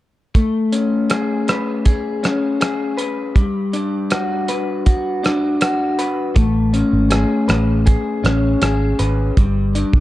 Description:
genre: indie pop, bedroom pop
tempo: 80 BPM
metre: 4/4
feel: straight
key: unclear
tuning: A4 = 441 Hz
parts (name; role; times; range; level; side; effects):
- cloth-damped thuddy drum kit; drums; 0.3-10.0 s; hi-hat, kick drum, rim click; -17 LUFS; right 1 dB; none
- electric guitar through a small old amp; accompaniment; 0.4-10.0 s; G3 to B4; -18 LUFS; left 2 dB; lush chorus, vibrato effect
- vintage muted fingered electric bass; bass; 6.4-10.0 s; G1 to B1; -18 LUFS; right 1 dB; none
room: light reverb, studio ambience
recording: none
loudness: -15 LUFS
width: side -15 dB against mid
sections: 0.4-10.0 A section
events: none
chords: 0.4 Amaj9; 3.4 Gmaj7; 6.4 Amaj9; 9.4 G

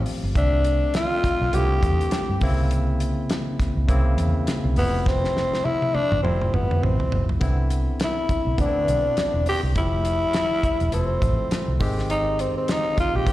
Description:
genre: lush 1970s-style soul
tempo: 102 BPM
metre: 4/4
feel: swing 58% on 16ths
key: C major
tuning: A4 = 438 Hz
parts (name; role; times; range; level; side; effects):
- growling tenor saxophone; melody; 0.0-13.3 s; B3 to G4; -23 LUFS; left 1 dB; plate reverb, slapback echo
- barky tine electric piano; accompaniment; 0.0-13.3 s; C3 to E5; -29 LUFS; left 1 dB; plate reverb, slapback echo
- vintage muted fingered electric bass; bass; 0.0-13.3 s; E1 to G2; -23 LUFS; equal; none
- damped 70s drum kit; drums; 0.1-13.3 s; hi-hat, kick drum, snare drum, toms; -25 LUFS; equal; none
room: light reverb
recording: live gig heard through the venue's PA, recital hall reverb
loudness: -20 LUFS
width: side -15 dB against mid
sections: 0.0-7.4 A section; 7.4-13.3 B section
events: drum fill 5.1-7.4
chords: 0.4 C69; 2.4 C7b9; 4.8 Fmaj7; 7.4 Cmaj9; 9.8 Fmaj9; 11.8 Abmaj7

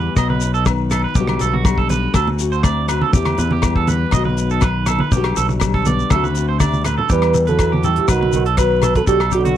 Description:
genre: highlife guitar band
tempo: 121 BPM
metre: 4/4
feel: straight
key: E minor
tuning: A4 = 439 Hz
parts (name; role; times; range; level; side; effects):
- nylon-string guitar; accompaniment; 0.0-9.6 s; E2 to G4; -24 LUFS; left 7 dB; none
- electric guitar at the edge of break-up; arpeggios; 0.0-9.6 s; F#4 to D#5; -22 LUFS; right 9 dB; tape echo
- fingered electric bass; bass; 0.0-9.6 s; B1 to E2; -20 LUFS; equal; none
- damped 70s drum kit; drums; 0.2-9.6 s; hi-hat, kick drum, rim click; -18 LUFS; equal; none
- agogo bells; percussion; 0.2-9.3 s; none; -28 LUFS; left 22 dB; none
- shekere; percussion; 0.2-9.5 s; none; -24 LUFS; left 6 dB; none
- congas; percussion; 0.3-9.6 s; none; -24 LUFS; right 3 dB; none
- warm velvety synth lead; melody; 7.1-9.6 s; F#4 to B4; -18 LUFS; right 2 dB; chorus, tremolo
- breathy tenor saxophone; second line; 7.1-9.6 s; D3 to G3; -25 LUFS; right 7 dB; none
room: little or no reverb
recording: dry, close 1970s-style studio recording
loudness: -14 LUFS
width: side -11 dB against mid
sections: 0.0-7.1 A section; 7.1-9.6 B section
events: drum fill 6.6-7.1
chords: 0.2 B; 1.2 Gmaj7/B; 2.2 D7; 3.1 Em; 4.1 B; 5.1 Gmaj7/B; 6.1 D7; 7.1 Em; 8.1 B

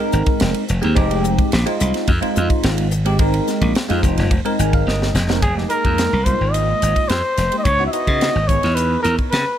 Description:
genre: electric jazz fusion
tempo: 108 BPM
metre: 4/4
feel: straight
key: F minor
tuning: A4 = 440 Hz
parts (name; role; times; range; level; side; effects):
- bell-like tine electric piano; accompaniment; 0.0-9.4 s; Ab3 to Ab5; -22 LUFS; right 1 dB; phaser
- glassy slap bass; bass; 0.1-9.4 s; F1 to Db3; -19 LUFS; equal; none
- tight funk drum kit; drums; 0.1-9.5 s; hi-hat, kick drum, ride cymbal, snare drum; -21 LUFS; equal; none
- mellow trumpet; melody; 5.4-9.6 s; Ab4 to Fb5; -19 LUFS; equal; none
room: little or no reverb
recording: none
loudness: -15 LUFS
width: side -10 dB against mid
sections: 0.0-5.4 A section; 5.4-9.6 B section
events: tine electric piano fill 4.3-5.4; drum fill 4.9-5.4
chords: 0.0 Fm11; 7.7 Dbm11

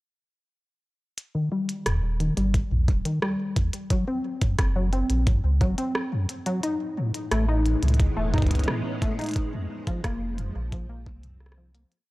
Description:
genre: IDM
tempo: 88 BPM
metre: 4/4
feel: straight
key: unclear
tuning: A4 = 440 Hz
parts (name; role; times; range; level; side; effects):
- glitchy drum kit; drums; 1.2-12.1 s; hi-hat, rim click; -32 LUFS; equal; none
- deep acid bass; arpeggios; 1.3-11.8 s; Eb2 to Eb4; -28 LUFS; left 1 dB; analog chorus, tape echo
- warm sub bass; bass; 1.9-11.8 s; Eb1 to Db2; -25 LUFS; equal; tube saturation
- electronic kick drum; drums; 2.5-11.2 s; none; -24 LUFS; equal; none
- soft string machine; sustained chords; 7.0-12.1 s; A2 to C#4; -34 LUFS; right 1 dB; phaser, ensemble chorus
room: light reverb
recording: dry, gritty hardware recording, transformer saturation, cassette tape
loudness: -23 LUFS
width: side -19 dB against mid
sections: 1.2-12.1 groove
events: fade-out 8.4-12.1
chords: 1.2 Eb; 3.9 N.C.; 6.6 Amaj7; 9.4 Fm

